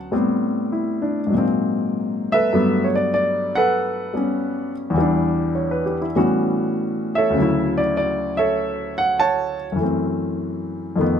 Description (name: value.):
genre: solo jazz.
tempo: 99 BPM.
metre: 4/4.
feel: swing 67% on 8ths.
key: D major.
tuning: A4 = 440 Hz.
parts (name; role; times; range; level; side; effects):
warm grand piano; solo; 0.0-11.2 s; D2 to A5; -18 LUFS; equal; none.
room: little or no reverb.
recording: close, detailed microphones.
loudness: -18 LUFS.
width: side -8 dB against mid.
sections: 0.0-11.2 A section.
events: none.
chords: 0.1 Am9; 1.3 G#9; 2.5 Gmaj9; 4.9 Em7; 6.2 A13; 7.4 Dmaj9; 9.8 F#m7b5.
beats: | 0.12 0.72 1.32 1.93 | 2.53 3.14 3.74 4.34 | 4.95 5.55 6.16 6.76 | 7.36 7.97 8.57 9.18 | 9.78 10.38 10.99.